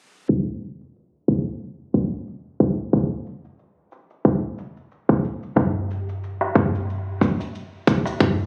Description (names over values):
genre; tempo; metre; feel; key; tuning
downtempo; 91 BPM; 4/4; swing 56% on 16ths; none; none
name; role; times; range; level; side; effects
electronic kick drum; drums; 0.3-8.4 s; none; -21 LUFS; equal; none
shaker; drums; 0.3-8.4 s; none; -50 LUFS; equal; none
darbuka; percussion; 5.6-8.4 s; none; -28 LUFS; equal; none
room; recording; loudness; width
little or no reverb; recorded on a phone in the room, club reverb, low-pass filter; -23 LUFS; mono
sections
0.3-8.5 A section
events
filter sweep 0.3-8.5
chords
none